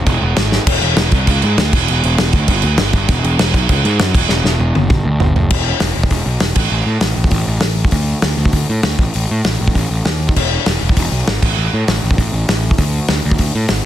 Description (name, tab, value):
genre	punk rock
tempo	198 BPM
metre	4/4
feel	straight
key	unclear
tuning	A4 = 440 Hz
part	fuzz picked electric bass	bass	0.0-13.8 s	E1 to A2	-16 LUFS	equal	overdrive
part	loose indie drum kit	drums	0.1-13.8 s	crash cymbal, hi-hat, kick drum, snare drum, toms	-15 LUFS	equal	none
room	little or no reverb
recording	dense, heavily limited modern master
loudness	-12 LUFS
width	side -12 dB against mid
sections	0.7-5.5 A section; 5.5-13.9 B section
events	drum fill 0.5, 4.3-5.5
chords	none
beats	0.07 0.37 | 0.67 0.97 1.28 1.58 | 1.88 2.18 2.49 2.79 | 3.09 3.39 3.70 4.00 | 4.30 4.60 4.91 5.21 | 5.51 5.81 6.12 6.42 | 6.72 7.03 7.33 7.63 | 7.94 8.24 8.54 8.85 | 9.15 9.46 9.76 10.06 | 10.37 10.67 10.97 11.27 | 11.58 11.88 12.18 12.49 | 12.79 13.09 13.39 13.70